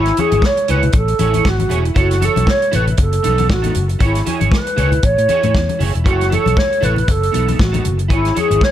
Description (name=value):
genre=disco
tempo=117 BPM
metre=4/4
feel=swing 56% on 16ths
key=unclear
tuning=A4 = 440 Hz
part: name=wooden-headed alto flute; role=melody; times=0.0-8.7 s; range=E4 to C#5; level=-18 LUFS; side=right 1 dB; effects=none
part: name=electric guitar at the edge of break-up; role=accompaniment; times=0.0-8.6 s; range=B3 to C#5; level=-22 LUFS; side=right 7 dB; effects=analog chorus
part: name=fingered electric bass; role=bass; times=0.0-8.6 s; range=E1 to A2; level=-17 LUFS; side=equal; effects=none
part: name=warm soul drum kit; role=drums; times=0.1-8.7 s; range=hi-hat, kick drum, snare drum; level=-18 LUFS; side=equal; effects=gated reverb
part: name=congas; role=percussion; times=0.2-8.6 s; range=none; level=-24 LUFS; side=left 6 dB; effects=none
room=little or no reverb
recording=none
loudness=-13 LUFS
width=side -11 dB against mid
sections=0.0-8.7 A section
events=none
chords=0.0 E6/G#; 0.9 Amaj7; 2.0 F#m7; 3.0 B7/F#; 4.0 E6/G#; 5.0 Amaj7; 6.1 F#m7; 7.1 B7/F#; 8.1 E6/G#